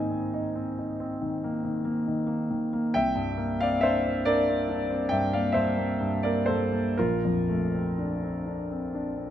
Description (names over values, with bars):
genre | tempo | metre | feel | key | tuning
classical, impressionist solo piano | 40-48 BPM (dotted quarters) | 9/8 | rubato | unclear | A4 = 440 Hz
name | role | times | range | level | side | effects
clear concert grand piano | solo | 0.0-9.3 s | Bb1 to Ab5 | -25 LUFS | equal | none
room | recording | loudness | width
moderate concert hall reverb, RT60 2.4 s | close, detailed microphones | -25 LUFS | side -10 dB against mid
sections
0.0-9.3 A section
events
none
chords
0.0 Abadd9; 2.9 C9; 7.0 Bbmaj9